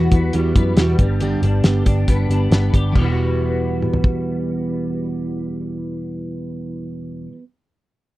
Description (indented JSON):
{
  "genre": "jangly indie pop",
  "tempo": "138 BPM",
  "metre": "4/4",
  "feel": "straight",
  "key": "E minor",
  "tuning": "A4 = 440 Hz",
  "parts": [
    { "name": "fingerpicked plugged-in steel-string acoustic guitar", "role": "accompaniment", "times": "0.0-7.5 s", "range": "E2 to G4", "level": "-24 LUFS", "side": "right 4 dB", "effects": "none" },
    { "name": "twelve-string electric guitar", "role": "arpeggios", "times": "0.0-7.4 s", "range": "G2 to G4", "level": "-25 LUFS", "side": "left 3 dB", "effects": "ensemble chorus, slapback echo" },
    { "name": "vintage muted picked electric bass", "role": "bass", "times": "0.0-7.3 s", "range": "E1 to F#2", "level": "-19 LUFS", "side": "equal", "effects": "none" },
    { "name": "cloth-damped thuddy drum kit", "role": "drums", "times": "0.1-4.1 s", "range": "crash cymbal, hi-hat, kick drum, snare drum, toms", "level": "-16 LUFS", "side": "equal", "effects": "none" }
  ],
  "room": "little or no reverb",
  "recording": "dry, close 1970s-style studio recording",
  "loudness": "-16 LUFS",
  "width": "side -17 dB against mid",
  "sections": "0.0-2.9 A section; 2.9-6.4 B section",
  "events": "none",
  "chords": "0.0 Emadd9; 1.0 G; 2.9 Emadd9"
}